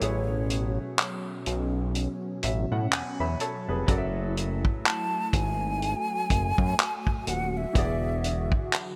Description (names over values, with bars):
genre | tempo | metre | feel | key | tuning
contemporary R&B | 62 BPM | 4/4 | swing 58% on 16ths | F# minor | A4 = 438 Hz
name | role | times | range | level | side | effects
breathy concert flute | melody | 0.0-8.5 s | C#5 to A5 | -34 LUFS | equal | delay
clear grand piano | accompaniment | 0.0-9.0 s | E3 to B5 | -38 LUFS | equal | none
warm analog pad | sustained chords | 0.0-9.0 s | B2 to F#4 | -38 LUFS | equal | chorus
fat analog bass | bass | 0.0-8.5 s | D#1 to A2 | -31 LUFS | equal | none
warm soul drum kit | drums | 0.0-9.0 s | handclaps, hi-hat, kick drum | -30 LUFS | equal | vintage 12-bit sampler grit
room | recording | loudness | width
light reverb | bright 1980s-style digital production | -28 LUFS | mono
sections
0.0-9.0 A section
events
break 0.0-3.9; grand piano fill 1.9-3.9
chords
0.0 Amaj9; 3.9 F#m9; 7.8 E9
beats
| 0.01 0.98 1.95 2.92 | 3.88 4.85 5.82 6.79 | 7.75 8.72